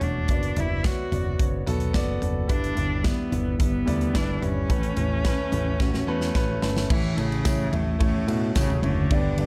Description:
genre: piano-driven pop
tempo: 109 BPM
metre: 4/4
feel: straight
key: unclear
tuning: A4 = 440 Hz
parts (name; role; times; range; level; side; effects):
- rich cello; melody; 0.0-9.5 s; A2 to F#4; -32 LUFS; equal; none
- clear grand piano; accompaniment; 0.0-9.5 s; G2 to E5; -32 LUFS; equal; none
- picked electric bass; bass; 0.0-9.5 s; E1 to A2; -30 LUFS; equal; none
- modern studio drum kit; drums; 0.0-9.5 s; crash cymbal, hi-hat, kick drum, ride cymbal, snare drum, toms; -28 LUFS; equal; none
- tambourine; percussion; 7.5-8.7 s; none; -46 LUFS; equal; none
room: light reverb, small room ambience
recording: dark, warm production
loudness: -24 LUFS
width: mono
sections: 0.0-6.9 A section; 6.9-9.5 B section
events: drum fill 5.8-6.9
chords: 0.3 D6/F#; 2.5 G6; 4.7 Aadd9; 6.9 A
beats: | 0.29 0.84 1.39 1.94 | 2.50 3.05 3.60 4.15 | 4.70 5.25 5.80 6.35 | 6.90 7.46 8.01 8.56 | 9.11

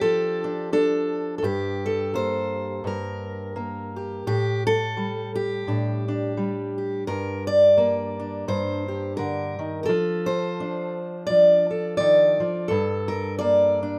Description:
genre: folk, solo fingerstyle acoustic guitar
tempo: 85 BPM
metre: 4/4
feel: swing 57% on 8ths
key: G minor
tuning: A4 = 442 Hz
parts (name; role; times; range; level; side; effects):
- fingerpicked steel-string acoustic guitar; solo; 0.0-14.0 s; G2 to D5; -24 LUFS; equal; none
room: light reverb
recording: none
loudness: -24 LUFS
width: mono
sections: 0.0-14.0 A section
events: none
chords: 0.0 Dm/F; 1.4 Gmadd9; 4.3 Dsus4/A; 7.1 Gm; 9.9 Dm/F; 12.7 Gmadd9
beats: 0.03 0.73 | 1.44 2.14 2.85 3.55 | 4.26 4.96 5.67 6.37 | 7.07 7.78 8.48 9.19 | 9.89 10.60 11.30 12.01 | 12.71 13.41

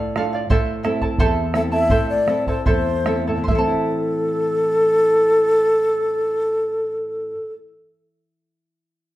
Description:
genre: andean folk, Andean ensemble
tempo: 70-88 BPM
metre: 2/4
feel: straight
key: A minor pentatonic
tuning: A4 = 440 Hz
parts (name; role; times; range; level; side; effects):
- breathy large quena; melody; 0.0-7.5 s; A4 to E5; -18 LUFS; left 1 dB; none
- charango; accompaniment; 0.0-7.7 s; E4 to A5; -23 LUFS; right 2 dB; none
- nylon-string guitar; accompaniment; 0.0-7.7 s; E2 to F4; -25 LUFS; equal; none
- bombo; percussion; 0.2-3.9 s; none; -23 LUFS; right 1 dB; none
room: moderate stone room reverb, RT60 1.0 s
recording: band playing live in one room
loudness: -17 LUFS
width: side -15 dB against mid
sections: 0.0-3.5 A section; 3.5-6.9 B section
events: slowing down 0.5-3.5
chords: 0.0 Dm/A; 0.5 Am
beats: | 0.50 1.19 | 1.91 2.66 | 3.48 4.33 | 5.18 6.03

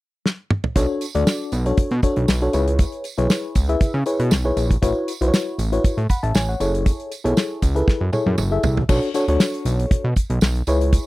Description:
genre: early-eighties boogie funk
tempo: 118 BPM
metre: 4/4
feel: straight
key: B dorian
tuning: A4 = 438 Hz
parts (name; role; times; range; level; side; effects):
- damped 70s drum kit; drums; 0.3-11.1 s; crash cymbal, hi-hat, kick drum, snare drum, toms; -19 LUFS; equal; none
- FM electric piano with auto-pan; accompaniment; 0.8-11.1 s; D4 to B5; -22 LUFS; left 2 dB; none
- fat analog bass; bass; 0.8-11.0 s; F#1 to C#3; -21 LUFS; equal; none
- tambourine; percussion; 0.8-11.1 s; none; -36 LUFS; right 8 dB; none
room: little or no reverb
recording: dry, close 1970s-style studio recording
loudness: -18 LUFS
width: side -19 dB against mid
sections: 0.8-8.9 A section; 8.9-11.1 B section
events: drum fill 0.3-0.8, 7.9-8.9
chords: 0.0 N.C.; 0.8 Bm9; 2.5 C#m7; 4.8 A69; 6.6 F#m7; 8.9 Bm9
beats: 0.25 | 0.76 1.27 1.78 2.28 | 2.79 3.30 3.81 4.32 | 4.83 5.33 5.84 6.35 | 6.86 7.37 7.88 8.39 | 8.89 9.40 9.91 10.42 | 10.93

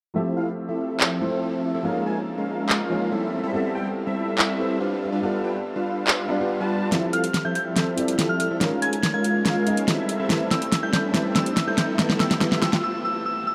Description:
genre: future bass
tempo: 142 BPM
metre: 4/4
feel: half-time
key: F lydian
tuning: A4 = 444 Hz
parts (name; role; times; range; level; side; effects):
- felt-muted upright piano; accompaniment; 0.1-13.5 s; F3 to Eb5; -31 LUFS; equal; low-pass filter, dub echo
- big bright polysynth; riff; 0.2-12.8 s; F3 to A5; -28 LUFS; equal; subtle chorus
- pop drum kit; drums; 1.0-12.8 s; handclaps, hi-hat, snare drum; -26 LUFS; equal; none
- riser; sound effects; 9.1-12.8 s; none; -37 LUFS; equal; none
- soft synth bell; melody; 7.1-13.5 s; E6 to Ab6; -30 LUFS; equal; chorus, low-pass filter, digital delay
room: moderate shimmer reverb, RT60 7.2 s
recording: dark, warm production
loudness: -23 LUFS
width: mono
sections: 0.2-6.9 A section; 6.9-13.5 B section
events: filter sweep on analog polysynth 0.2-6.9, 6.9-13.5; filter sweep on felt piano 0.2-6.9; build-up 6.9-13.5; drum fill 6.9-12.8; filter sweep on synth bell 6.9-13.5; break 12.8-13.5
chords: 0.2 Fmaj7; 1.8 Db6/F; 3.3 Am7; 5.0 G7; 6.9 Fmaj7; 8.6 Db6; 10.1 Am7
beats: | 0.16 0.58 1.00 1.43 | 1.85 2.27 2.69 3.12 | 3.54 3.96 4.38 4.81 | 5.23 5.65 6.08 6.50 | 6.92 7.34 7.76 8.19 | 8.61 9.03 9.46 9.88 | 10.30 10.72 11.14 11.57 | 11.99 12.41 12.84 13.26

